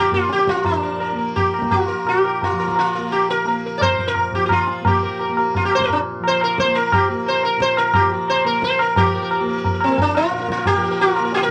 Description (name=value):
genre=indian classical, Hindustani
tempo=174 BPM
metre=3/4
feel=straight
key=Bb raga bhupali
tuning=A4 = 439 Hz
part: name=sitar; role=melody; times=0.0-11.5 s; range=C4 to D5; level=-21 LUFS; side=equal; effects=none
part: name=tanpura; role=drone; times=0.0-11.5 s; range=Bb2 to Bb3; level=-30 LUFS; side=equal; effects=none
part: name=tabla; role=percussion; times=0.1-11.5 s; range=none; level=-23 LUFS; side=equal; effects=none
room=moderate club reverb, RT60 0.8 s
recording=none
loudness=-19 LUFS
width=mono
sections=0.7-9.0 A section; 9.0-11.5 B section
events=speeding up 0.0-11.5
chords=none